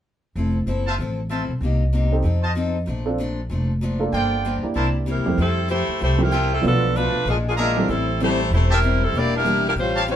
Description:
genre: jazz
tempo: 192 BPM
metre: 4/4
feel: swing 61% on 8ths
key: F major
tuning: A4 = 440 Hz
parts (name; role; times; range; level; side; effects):
- picked steel-string acoustic guitar; accompaniment; 0.4-10.2 s; G2 to A4; -28 LUFS; left 3 dB; none
- upright bass; bass; 0.4-10.2 s; E1 to G2; -22 LUFS; equal; none
- clear trumpet section; stabs; 0.9-10.0 s; E4 to Bb5; -25 LUFS; right 1 dB; none
- warm baby grand piano; accompaniment; 2.1-9.6 s; F2 to A4; -25 LUFS; right 3 dB; none
- warm saxophone section; melody; 5.1-10.2 s; F3 to D5; -22 LUFS; equal; none
room: moderate studio reverb, RT60 0.6 s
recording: band playing live in one room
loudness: -19 LUFS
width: side -10 dB against mid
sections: 0.4-5.4 A section; 5.4-10.2 B section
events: none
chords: 0.4 Fmaj7; 1.6 Cm7; 2.2 F7; 2.9 Bbmaj7; 4.1 Gm7; 4.7 C7; 5.4 Fmaj9; 6.6 Bm7b5; 7.3 Bb7#11; 7.9 Am7; 9.1 Em7b5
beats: | 0.36 0.67 0.99 1.30 | 1.61 1.93 2.24 2.56 | 2.87 3.18 3.50 3.81 | 4.12 4.44 4.75 5.06 | 5.38 5.69 6.00 6.32 | 6.63 6.94 7.25 7.57 | 7.88 8.19 8.51 8.82 | 9.13 9.45 9.76 10.07

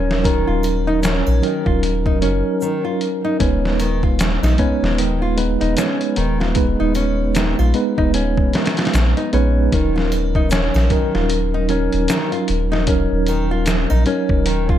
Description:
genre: trip hop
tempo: 76 BPM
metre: 4/4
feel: swing 59% on 16ths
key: Eb minor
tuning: A4 = 442 Hz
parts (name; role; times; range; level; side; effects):
- mellow tine electric piano; accompaniment; 0.0-14.8 s; Gb3 to Cb5; -20 LUFS; right 1 dB; medium stereo tremolo, low-pass filter, tape echo
- nylon-string guitar; arpeggios; 0.0-14.8 s; Eb3 to F4; -24 LUFS; equal; tape echo
- soft dub sub bass; bass; 0.0-14.8 s; Eb1 to Bb1; -20 LUFS; equal; none
- trip hop sampler-style drum kit; drums; 0.1-14.8 s; hi-hat, kick drum, snare drum; -21 LUFS; equal; none
- triangle and egg shaker; percussion; 0.6-14.0 s; none; -39 LUFS; right 2 dB; none
room: light reverb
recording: dark, warm production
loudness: -15 LUFS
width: side -11 dB against mid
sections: 0.0-14.8 A section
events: filter sweep on tine electric piano 0.0-14.8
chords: 0.0 Ebm7; 3.4 Abm/Eb; 9.7 Ebm7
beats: | 0.25 1.04 1.83 2.62 | 3.41 4.20 4.99 5.78 | 6.57 7.36 8.14 8.93 | 9.72 10.51 11.30 12.09 | 12.88 13.67 14.46

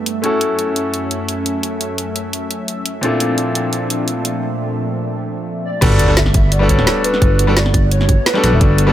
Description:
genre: liquid drum and bass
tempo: 172 BPM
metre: 4/4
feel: straight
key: G lydian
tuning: A4 = 440 Hz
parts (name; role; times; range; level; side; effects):
- bright concert grand piano; accompaniment; 0.0-8.9 s; Bb2 to A4; -19 LUFS; left 2 dB; low-pass filter, dub echo
- lush unison pad; sustained chords; 0.0-8.9 s; F#2 to E5; -23 LUFS; right 1 dB; chorus, phaser, vintage 12-bit sampler grit, sidechain pumping
- drum and bass drum kit; drums; 0.1-8.9 s; crash cymbal, hi-hat, snare drum; -20 LUFS; right 1 dB; none
- hollow clarinet-like synth lead; melody; 5.6-8.9 s; B4 to E5; -21 LUFS; right 1 dB; ensemble chorus
- smooth gliding synth bass; bass; 5.8-8.9 s; D1 to B1; -14 LUFS; equal; none
- electronic kick drum; drums; 5.8-8.7 s; none; -14 LUFS; equal; none
- sub drop; sound effects; 5.8-7.2 s; none; -21 LUFS; equal; none
room: little or no reverb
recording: none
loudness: -14 LUFS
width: side -12 dB against mid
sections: 0.0-5.8 A section; 5.8-8.9 B section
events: filter sweep on grand piano 0.0-5.8; break 4.4-5.8; drop 5.8-8.9; impact 5.8-7.2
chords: 0.2 F#m7; 3.0 Bbmaj9#11; 5.8 Gmaj7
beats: | 0.24 0.59 0.94 1.29 | 1.64 1.98 2.33 2.68 | 3.03 3.38 3.73 4.08 | 4.42 4.77 5.12 5.47 | 5.82 6.17 6.52 6.87 | 7.22 7.57 7.91 8.26 | 8.61

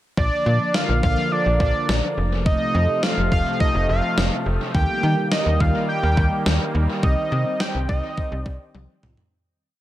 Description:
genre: synth-pop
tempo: 105 BPM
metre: 4/4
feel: straight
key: Bb major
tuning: A4 = 440 Hz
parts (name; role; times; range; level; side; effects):
- fat analog lead; melody; 0.2-8.7 s; D5 to G5; -24 LUFS; equal; chorus, dub echo
- sweeping resonant pad; sustained chords; 0.2-9.3 s; C3 to C4; -26 LUFS; equal; chorus
- slap-like FM bass; bass; 0.2-9.2 s; F1 to Eb3; -21 LUFS; equal; none
- gated 80s digital drum machine; drums; 0.2-9.3 s; kick drum, snare drum, toms; -24 LUFS; equal; gated reverb, gated reverb snare, dub echo
room: light reverb, digital ambience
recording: echo-heavy mix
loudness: -18 LUFS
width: side -14 dB against mid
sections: 0.2-9.3 verse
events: fade-out 7.0-9.3; drum fill 8.7-9.3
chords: 0.2 Bb; 2.2 F; 4.7 Eb; 7.0 Cm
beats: | 0.17 0.75 1.32 1.89 | 2.46 3.03 3.60 4.17 | 4.75 5.32 5.89 6.46 | 7.03 7.60 8.17 8.75

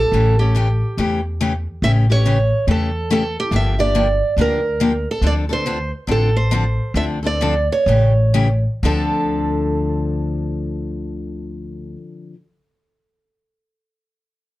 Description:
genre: acoustic string swing (jazz manouche)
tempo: 120-141 BPM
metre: 4/4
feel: swing 62% on 8ths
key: D minor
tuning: A4 = 441 Hz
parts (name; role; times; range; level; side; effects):
- picked old ladder-braced acoustic guitar; melody; 0.0-12.0 s; G4 to E5; -20 LUFS; right 3 dB; none
- upright bass; bass; 0.0-11.9 s; G1 to E2; -19 LUFS; equal; none
- picked steel-string acoustic guitar; accompaniment; 0.1-12.4 s; C#3 to A4; -22 LUFS; left 3 dB; none
room: light reverb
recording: dark, warm production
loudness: -16 LUFS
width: side -16 dB against mid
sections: 0.0-8.8 A section; 8.8-12.8 B section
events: slowing down 5.2-8.8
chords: 0.1 A7; 3.5 Gm7; 5.2 Dm7; 7.9 A7; 8.8 Dm7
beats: | 0.13 0.55 0.98 1.40 | 1.83 2.25 2.68 3.10 | 3.53 3.95 4.38 4.80 | 5.22 5.65 6.08 6.51 | 6.96 7.41 7.87 8.34 | 8.83 9.33 9.83 10.33 | 10.83 11.33 11.83 12.33

